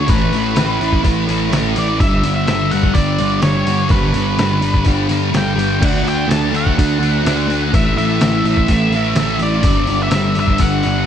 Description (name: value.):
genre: rock, shoegaze and dream pop.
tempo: 126 BPM.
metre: 4/4.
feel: straight.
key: unclear.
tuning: A4 = 439 Hz.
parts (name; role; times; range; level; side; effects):
octave-fuzz lead guitar; melody; 0.0-11.1 s; B4 to A5; -21 LUFS; equal; distortion, tape echo.
thick fuzz guitar; riff; 0.0-11.1 s; G2 to D4; -17 LUFS; equal; distortion, analog chorus.
picked electric bass; bass; 0.0-11.1 s; G1 to D2; -20 LUFS; equal; none.
trip hop sampler-style drum kit; drums; 0.1-10.9 s; crash cymbal, hi-hat, kick drum, snare drum; -18 LUFS; equal; none.
room: moderate lush hall reverb, RT60 1.8 s.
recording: dreamy mix soaked in reverb.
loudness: -13 LUFS.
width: side -9 dB against mid.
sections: 0.0-11.1 A section.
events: none.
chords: 0.1 Asus2; 2.0 G5; 5.8 D; 7.7 A5; 9.7 G5.